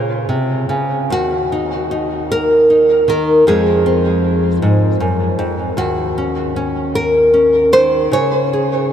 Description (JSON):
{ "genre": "folk, solo fingerstyle acoustic guitar", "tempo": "51 BPM (dotted quarters)", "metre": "6/8", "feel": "rubato", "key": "Eb dorian", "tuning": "A4 = 438 Hz", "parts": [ { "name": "nylon-string guitar", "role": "solo", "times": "0.0-8.9 s", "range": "Eb2 to Db5", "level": "-12 LUFS", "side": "equal", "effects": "diffuse ambient delay" } ], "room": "wet huge ambient reverb, RT60 8.1 s", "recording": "dreamy mix soaked in reverb", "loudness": "-12 LUFS", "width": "side -9 dB against mid", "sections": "0.0-1.1 A section; 1.1-8.9 A section", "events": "none", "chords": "0.0 Db; 1.1 N.C.; 3.5 Fm; 5.8 Ebm7; 8.1 Db5" }